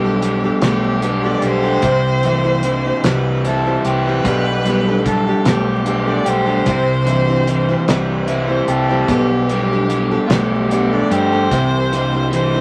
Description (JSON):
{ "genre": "folk rock and heartland rock", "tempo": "50 BPM (dotted quarters)", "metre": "6/8", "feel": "straight", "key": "C major", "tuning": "A4 = 439 Hz", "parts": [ { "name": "rich fiddle", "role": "melody", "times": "0.0-12.6 s", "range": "F4 to D5", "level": "-24 LUFS", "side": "equal", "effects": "none" }, { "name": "picked steel-string acoustic guitar", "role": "accompaniment", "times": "0.0-12.6 s", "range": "C3 to C5", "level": "-23 LUFS", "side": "equal", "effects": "none" }, { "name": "crunchy overdriven guitar", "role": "riff", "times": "0.0-12.6 s", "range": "B2 to G4", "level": "-20 LUFS", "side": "equal", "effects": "spring reverb" }, { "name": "fingered electric bass", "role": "bass", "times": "0.0-12.6 s", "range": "B1 to G2", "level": "-24 LUFS", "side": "equal", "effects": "none" }, { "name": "damped 70s drum kit", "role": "drums", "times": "0.2-12.5 s", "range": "hi-hat, kick drum, snare drum", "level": "-23 LUFS", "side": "equal", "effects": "none" } ], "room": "moderate studio reverb, RT60 0.9 s", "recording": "vinyl crackle, faint mains hum", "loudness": "-16 LUFS", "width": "mono", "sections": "0.0-12.6 A section", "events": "none", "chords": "0.0 Gadd9/B; 1.8 C; 4.2 Gadd9/B; 6.7 C; 9.1 Gadd9/B; 11.5 C" }